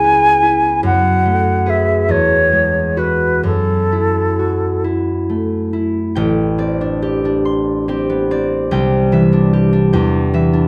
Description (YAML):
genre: classical, impressionist duo for flute and harp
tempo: 42-51 BPM (dotted quarters)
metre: 6/8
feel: rubato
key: F# minor, A minor from 6.2 s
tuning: A4 = 440 Hz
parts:
  - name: concert flute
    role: melody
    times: 0.0-4.8 s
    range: A4 to G#5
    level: -17 LUFS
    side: equal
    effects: none
  - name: concert harp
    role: accompaniment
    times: 0.0-10.7 s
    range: A1 to C6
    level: -17 LUFS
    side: equal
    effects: none
room: moderate large studio reverb, RT60 0.9 s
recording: none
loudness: -15 LUFS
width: mono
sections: 0.0-6.2 A section; 6.2-10.7 B section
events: none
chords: 0.0 C#m7; 0.8 F#m11; 2.1 Eadd9; 3.4 F#m7; 6.2 Am11; 8.7 Cadd9; 9.9 Em7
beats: | 0.85 2.10 | 3.45 4.85 | 6.18 7.46 | 8.71 9.91